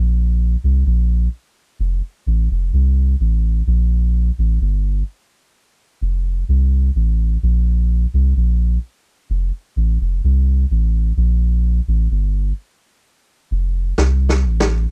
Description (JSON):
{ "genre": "dub reggae", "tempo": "64 BPM", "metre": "4/4", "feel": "straight", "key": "unclear", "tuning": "A4 = 441 Hz", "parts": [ { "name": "soft dub sub bass", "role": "bass", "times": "0.0-14.9 s", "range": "F1 to C2", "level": "-17 LUFS", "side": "equal", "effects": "none" }, { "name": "snare drum", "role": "drums", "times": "14.0-14.8 s", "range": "none", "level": "-22 LUFS", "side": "equal", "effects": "none" } ], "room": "little or no reverb", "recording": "dry, close 1970s-style studio recording", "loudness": "-18 LUFS", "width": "mono", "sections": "0.0-14.9 A section", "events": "filter sweep 0.0-14.9; drum fill 14.0-14.9", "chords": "none" }